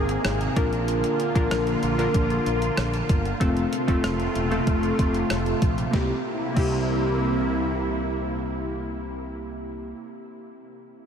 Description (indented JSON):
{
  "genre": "1980s-style pop",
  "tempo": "95 BPM",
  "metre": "4/4",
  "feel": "straight",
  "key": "C mixolydian",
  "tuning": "A4 = 437 Hz",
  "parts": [
    { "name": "glassy digital keys", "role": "accompaniment", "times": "0.0-11.0 s", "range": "A3 to Bb4", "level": "-26 LUFS", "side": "left 1 dB", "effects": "chorus, tube saturation" },
    { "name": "lush unison pad", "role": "sustained chords", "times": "0.0-9.2 s", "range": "C3 to Ab4", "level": "-28 LUFS", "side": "right 1 dB", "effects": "chorus, phaser" },
    { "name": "fretless electric bass", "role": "bass", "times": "0.0-9.9 s", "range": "E1 to C2", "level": "-29 LUFS", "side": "equal", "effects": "none" },
    { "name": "gated 80s digital drum machine", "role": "drums", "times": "0.1-6.7 s", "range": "crash cymbal, hi-hat, kick drum, rim click, snare drum", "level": "-27 LUFS", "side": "equal", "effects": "gated reverb, gated reverb snare, overdrive" }
  ],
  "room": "wet huge ambient reverb, RT60 7.3 s",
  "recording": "dreamy mix soaked in reverb",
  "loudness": "-22 LUFS",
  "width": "side -7 dB against mid",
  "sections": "0.0-5.9 A section; 5.9-8.5 B section",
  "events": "none",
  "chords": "0.0 Abadd9; 0.6 Bb; 3.4 F; 5.9 C7"
}